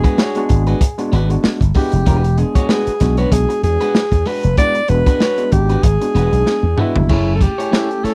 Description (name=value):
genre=funk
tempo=96 BPM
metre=4/4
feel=swing 56% on 16ths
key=E mixolydian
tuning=A4 = 441 Hz
part: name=breathy alto saxophone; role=melody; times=0.0-8.1 s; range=E4 to D5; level=-22 LUFS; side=equal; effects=none
part: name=electric guitar at the edge of break-up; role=accompaniment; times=0.0-8.1 s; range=G#3 to C#5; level=-26 LUFS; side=equal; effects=none
part: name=tine electric piano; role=stabs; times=0.0-8.1 s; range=G#3 to A4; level=-25 LUFS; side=equal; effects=none
part: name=crunchy breakbeat drum kit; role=drums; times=0.0-8.1 s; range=crash cymbal, hi-hat, kick drum, snare drum, toms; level=-19 LUFS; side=equal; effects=none
part: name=slap bass with an envelope filter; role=bass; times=0.5-8.1 s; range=E1 to E2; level=-18 LUFS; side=equal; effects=none
room=little or no reverb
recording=dry, close 1970s-style studio recording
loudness=-15 LUFS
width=mono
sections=0.0-7.1 A section; 7.1-8.1 B section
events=drum fill 6.5-7.1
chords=0.0 E9; 7.1 F#m9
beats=0.18 0.81 1.44 | 2.06 2.69 3.32 3.95 | 4.58 5.21 5.84 6.47 | 7.10 7.73